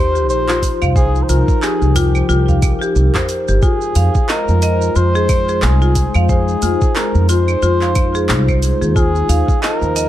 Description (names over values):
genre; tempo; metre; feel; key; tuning
organic downtempo; 90 BPM; 4/4; swing 57% on 16ths; F minor pentatonic; A4 = 440 Hz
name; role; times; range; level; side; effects
trumpet with cup mute; melody; 0.0-10.1 s; G4 to C5; -21 LUFS; equal; digital delay
warbly tape-like pad; sustained chords; 0.0-10.1 s; F3 to C5; -22 LUFS; left 1 dB; chorus, built-in reverb, sidechain pumping
upright bass; bass; 0.0-10.1 s; G1 to F2; -15 LUFS; equal; sidechain pumping
marimba with hard mallets; arpeggios; 0.2-10.1 s; F4 to F5; -21 LUFS; left 2 dB; digital delay
deep house drum kit; drums; 0.2-10.1 s; claves, handclaps, hi-hat, shaker; -23 LUFS; right 2 dB; none
electronic kick drum; drums; 0.6-9.6 s; none; -16 LUFS; equal; none
udu; percussion; 0.8-3.3 s; none; -21 LUFS; right 1 dB; none
room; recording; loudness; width
light reverb, small room ambience; dark, warm production; -12 LUFS; side -13 dB against mid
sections
0.0-3.6 A section; 3.6-10.1 B section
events
none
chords
0.0 Eb69; 1.0 Cm7; 3.6 Fm7; 9.0 Ebsus2